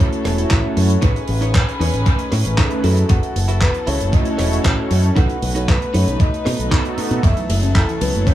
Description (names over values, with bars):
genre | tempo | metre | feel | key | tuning
nu-disco, nu disco | 116 BPM | 4/4 | straight | F# dorian | A4 = 440 Hz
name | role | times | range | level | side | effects
soft octave-layered synth lead | melody | 0.0-8.3 s | A4 to F#5 | -27 LUFS | left 2 dB | chorus, tremolo, cassette tape, tape echo
warm analog pad | accompaniment | 0.0-8.3 s | D#3 to D#5 | -24 LUFS | right 1 dB | analog chorus, vintage 12-bit sampler grit, sidechain pumping, analog delay
dark studio string section | sustained chords | 0.0-8.3 s | D#3 to B4 | -28 LUFS | left 2 dB | sidechain pumping
direct-recorded clean electric guitar | riff | 0.0-7.0 s | D#4 to E5 | -28 LUFS | right 2 dB | lush chorus, analog delay
tight funk drum kit | drums | 0.1-8.3 s | handclaps, hi-hat, ride cymbal, rim click | -26 LUFS | right 1 dB | small room ambience, analog delay
fingered electric bass with an envelope filter | bass | 0.2-8.2 s | E1 to B2 | -18 LUFS | equal | tube saturation
electronic kick drum | drums | 0.5-8.3 s | none | -16 LUFS | equal | small room ambience
soft round pluck | arpeggios | 7.2-8.3 s | E3 to E4 | -24 LUFS | left 2 dB | chorus, cassette tape, sidechain pumping, tape echo
room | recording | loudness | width
light reverb, small room ambience | echo-heavy mix | -15 LUFS | side -13 dB against mid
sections
0.0-8.3 A section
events
none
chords
0.0 F#m7; 1.0 Amaj9#11; 2.8 F#m7; 5.2 B7; 7.2 F#m7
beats
0.51 | 1.03 1.55 2.06 2.58 | 3.10 3.62 4.13 4.65 | 5.17 5.68 6.20 6.72 | 7.24 7.75 8.27